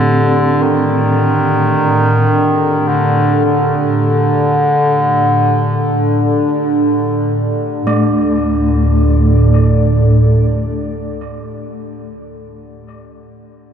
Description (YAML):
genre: dark ambient drone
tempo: free time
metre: none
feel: none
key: D in sen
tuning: A4 = 440 Hz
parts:
  - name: warm bass clarinet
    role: melody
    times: 0.0-6.7 s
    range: D3 to Eb3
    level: -16 LUFS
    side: left 1 dB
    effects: ping-pong delay
  - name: deep dark ambient pad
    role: sustained chords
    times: 0.0-11.5 s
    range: D4 to D5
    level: -17 LUFS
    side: equal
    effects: chorus, built-in reverb
  - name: gamelan-type bronze metallophone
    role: arpeggios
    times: 0.0-11.2 s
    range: A3 to C4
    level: -23 LUFS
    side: equal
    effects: ping-pong delay
  - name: deep rumbling drone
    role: drone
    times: 0.0-11.2 s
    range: D2 to A2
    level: -16 LUFS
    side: right 1 dB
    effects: built-in reverb, phaser
  - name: bronze singing bowl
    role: texture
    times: 0.0-7.9 s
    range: D4 to G4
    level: -29 LUFS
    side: left 2 dB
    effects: none
room: wet huge ambient reverb, RT60 7.4 s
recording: dark, warm production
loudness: -11 LUFS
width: side -8 dB against mid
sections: 0.0-7.9 A section; 7.9-12.3 B section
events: none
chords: 0.0 D5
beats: free time